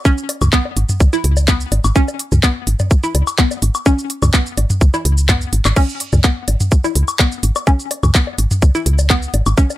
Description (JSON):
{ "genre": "minimal techno", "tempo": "126 BPM", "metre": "4/4", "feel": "straight", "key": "C# minor", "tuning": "A4 = 439 Hz", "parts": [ { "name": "hollow square pluck", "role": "riff", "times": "0.1-9.6 s", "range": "B3 to E4", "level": "-21 LUFS", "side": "equal", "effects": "analog chorus, sidechain pumping, ping-pong delay" }, { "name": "electronic kick drum", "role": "drums", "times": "0.1-9.7 s", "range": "none", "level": "-13 LUFS", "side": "equal", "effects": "overdrive" }, { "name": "minimal click drum kit", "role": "drums", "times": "0.1-9.8 s", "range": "crash cymbal, handclaps, hi-hat, shaker", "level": "-20 LUFS", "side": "equal", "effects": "overdrive" }, { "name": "electronic woodblock and toms", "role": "percussion", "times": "0.3-9.8 s", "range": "none", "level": "-21 LUFS", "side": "left 2 dB", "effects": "digital delay" }, { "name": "woody FM bass", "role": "bass", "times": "0.4-9.5 s", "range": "G#1 to C#2", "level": "-15 LUFS", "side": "equal", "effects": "sidechain pumping" } ], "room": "little or no reverb", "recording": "none", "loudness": "-13 LUFS", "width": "side -15 dB against mid", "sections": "0.0-9.8 A section", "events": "none", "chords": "0.0 C#7(no3)" }